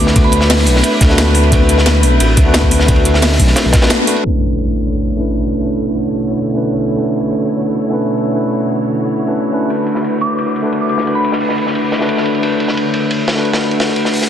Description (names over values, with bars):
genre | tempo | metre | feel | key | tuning
liquid drum and bass | 176 BPM | 4/4 | straight | unclear | A4 = 440 Hz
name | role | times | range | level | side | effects
soft synth bell | melody | 0.0-0.5, 10.2-11.4 s | B5 to D6 | -23 LUFS | right 1 dB | chorus, phaser, dub echo
tine electric piano | accompaniment | 0.0-14.3 s | A3 to B4 | -16 LUFS | equal | tape echo
dark studio string section | sustained chords | 0.0-14.3 s | B2 to C#5 | -22 LUFS | equal | sidechain pumping, low-pass filter
smooth synth bass | bass | 0.0-3.7 s | A1 to D2 | -13 LUFS | equal | none
crunchy breakbeat drum kit | drums | 0.1-4.2, 9.7-14.3 s | hi-hat, ride cymbal, snare drum | -19 LUFS | equal | high-pass filter on cymbals, high-pass filter on hats, high-pass filter on snare, high-pass filter on room
drum and bass drum kit | drums | 0.2-13.7 s | hi-hat, snare drum | -19 LUFS | equal | low-pass filter on hats, low-pass filter on snare, low-pass filter on room
electronic kick drum | drums | 0.2-3.8 s | none | -13 LUFS | equal | none
congas | percussion | 0.2-4.1 s | none | -23 LUFS | left 5 dB | none
impact | sound effects | 4.2-5.6 s | none | -20 LUFS | equal | none
room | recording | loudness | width
wet lush hall reverb, RT60 1.9 s, studio reverb | dense, heavily limited modern master, low-pass filter | -12 LUFS | side -9 dB against mid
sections
0.0-4.2 A section; 4.2-14.3 B section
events
drop 0.0-4.2; band accent 3.9; impact 4.2-5.6; filter sweep on string section 4.2-14.3; filter sweep 4.2-14.3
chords
0.0 D6; 4.2 Bm11; 9.7 D6